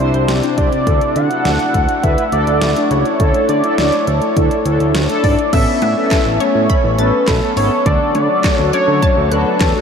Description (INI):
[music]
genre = synth-pop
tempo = 103 BPM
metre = 4/4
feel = straight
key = unclear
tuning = A4 = 440 Hz
[part]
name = mellow synth brass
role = accompaniment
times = 0.0-9.8 s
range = B3 to C5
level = -20 LUFS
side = equal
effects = chorus, phaser
[part]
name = warm analog pad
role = sustained chords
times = 0.0-9.8 s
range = C3 to C#5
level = -22 LUFS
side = left 2 dB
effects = lush chorus
[part]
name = fat analog bass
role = bass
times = 0.0-9.7 s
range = G#1 to D3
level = -18 LUFS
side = equal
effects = none
[part]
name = pop drum kit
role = drums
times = 0.1-9.7 s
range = crash cymbal, handclaps, hi-hat, kick drum, snare drum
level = -19 LUFS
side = equal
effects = none
[part]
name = wide unison lead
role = melody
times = 0.6-9.8 s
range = A4 to F#5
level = -17 LUFS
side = equal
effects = ping-pong delay
[part]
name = resonant blip pluck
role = arpeggios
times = 5.5-9.8 s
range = C#3 to A6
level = -26 LUFS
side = equal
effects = phaser, ping-pong delay
[sound]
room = wet cathedral reverb, RT60 6.8 s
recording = dreamy mix soaked in reverb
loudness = -12 LUFS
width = side -6 dB against mid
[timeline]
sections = 0.0-5.5 A section; 5.5-9.8 B section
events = none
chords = 0.0 Cadd9; 0.9 Dsus2; 5.5 Aadd9; 7.9 D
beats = 0.29 | 0.87 1.45 2.03 2.62 | 3.20 3.78 4.36 4.95 | 5.53 6.11 6.70 7.28 | 7.86 8.44 9.03 9.61